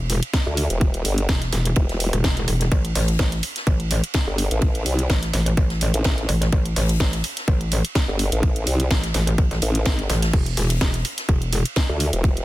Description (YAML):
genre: bass house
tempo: 126 BPM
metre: 4/4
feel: swing 54% on 16ths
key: unclear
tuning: A4 = 440 Hz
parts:
  - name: metallic wobble bass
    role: bass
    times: 0.0-11.6 s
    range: E1 to A1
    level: -21 LUFS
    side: equal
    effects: distortion, chorus, overdrive, sidechain pumping
  - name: garage drum kit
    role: drums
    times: 0.1-12.4 s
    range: crash cymbal, hi-hat, snare drum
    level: -26 LUFS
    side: equal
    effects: small room reverb
  - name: swinging big-band drum kit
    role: drums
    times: 0.1-12.4 s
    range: hi-hat, ride cymbal, snare drum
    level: -32 LUFS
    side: right 2 dB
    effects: high-pass filter on cymbals, small room reverb, high-pass filter on hats, high-pass filter on snare, high-pass filter on room
  - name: electronic kick drum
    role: drums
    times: 0.3-12.3 s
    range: none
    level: -20 LUFS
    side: equal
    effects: small room reverb
  - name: formant-sweep wobble bass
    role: bass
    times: 0.5-12.4 s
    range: E1 to D2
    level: -22 LUFS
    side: equal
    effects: chorus, sidechain pumping
room: studio ambience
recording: dense, heavily limited modern master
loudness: -19 LUFS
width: side -16 dB against mid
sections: 0.0-12.4 A section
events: none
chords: none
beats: 0.34 | 0.81 1.29 1.76 2.24 | 2.72 3.19 3.67 4.14 | 4.62 5.10 5.57 6.05 | 6.53 7.00 7.48 7.95 | 8.43 8.91 9.38 9.86 | 10.34 10.81 11.29 11.76 | 12.24